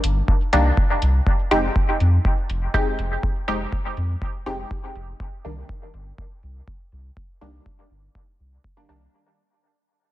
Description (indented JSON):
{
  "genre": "dub techno",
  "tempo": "122 BPM",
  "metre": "4/4",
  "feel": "straight",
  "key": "unclear",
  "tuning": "A4 = 442 Hz",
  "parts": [
    { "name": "soft dub sub bass", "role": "bass", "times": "0.0-9.1 s", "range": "F1 to F2", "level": "-21 LUFS", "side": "equal", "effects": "sidechain pumping" },
    { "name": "electronic hi-hat", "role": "drums", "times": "0.0-9.0 s", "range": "none", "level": "-31 LUFS", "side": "left 1 dB", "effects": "overdrive, low-pass filter on hats" },
    { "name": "electronic kick drum", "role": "drums", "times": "0.3-8.7 s", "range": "none", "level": "-22 LUFS", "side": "equal", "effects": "overdrive" },
    { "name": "filtered dub chord stab", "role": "stabs", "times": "0.5-9.0 s", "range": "Eb3 to G4", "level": "-24 LUFS", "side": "equal", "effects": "chorus, phaser, sidechain pumping, dub echo" }
  ],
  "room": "light reverb, digital ambience",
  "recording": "none",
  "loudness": "-19 LUFS",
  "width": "side -15 dB against mid",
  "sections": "0.0-9.1 A section",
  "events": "fade-out 0.0-9.1",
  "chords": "0.0 Cm7; 1.3 Fm7; 5.2 Cm7"
}